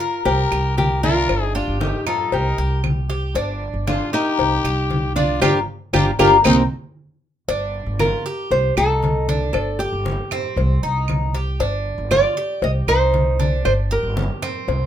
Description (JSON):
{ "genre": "latin, Cuban son and guajira", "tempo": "116 BPM", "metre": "4/4", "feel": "straight", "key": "G minor", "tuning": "A4 = 440 Hz", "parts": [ { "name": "nylon-string guitar", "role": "melody", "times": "0.0-14.9 s", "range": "Bb3 to Eb5", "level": "-21 LUFS", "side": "right 1 dB", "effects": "none" }, { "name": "growling trumpet", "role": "second line", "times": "0.0-6.6 s", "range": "Eb4 to Bb4", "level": "-25 LUFS", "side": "left 5 dB", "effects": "none" }, { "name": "Cuban tres", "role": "arpeggios", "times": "0.0-14.9 s", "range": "C4 to C5", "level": "-24 LUFS", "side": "left 1 dB", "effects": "none" }, { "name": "congas", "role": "percussion", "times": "0.0-14.9 s", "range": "none", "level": "-26 LUFS", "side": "left 1 dB", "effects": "none" }, { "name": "upright bass", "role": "bass", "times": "0.3-14.9 s", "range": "G1 to C2", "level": "-22 LUFS", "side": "right 1 dB", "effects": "none" }, { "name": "cowbell", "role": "percussion", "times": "0.3-14.9 s", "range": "none", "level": "-27 LUFS", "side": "left 9 dB", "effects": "none" }, { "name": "claves", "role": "percussion", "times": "0.5-14.7 s", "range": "none", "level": "-28 LUFS", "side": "right 11 dB", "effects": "none" } ], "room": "moderate studio reverb, RT60 0.5 s", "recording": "minimal, uncompressed stereo recording", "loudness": "-17 LUFS", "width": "side -10 dB against mid", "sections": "0.0-7.5 A section; 7.5-14.9 A section", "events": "band accent 5.4-7.5; drum fill 7.2", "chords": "0.3 C5; 1.3 G5; 2.3 Cm7; 3.4 Gm7; 4.4 Cm7; 5.4 Gm7; 6.5 Cm7; 7.5 Gm7; 8.5 Cm; 9.5 G5; 10.6 Cm; 11.6 G5; 12.6 Cm; 13.7 Gm", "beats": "0.26 0.78 | 1.29 1.81 2.33 2.84 | 3.36 3.87 4.39 4.91 | 5.42 5.94 6.45 6.97 | 7.48 8.00 8.51 9.03 | 9.54 10.06 10.57 11.08 | 11.60 12.11 12.63 13.14 | 13.65 14.17 14.68" }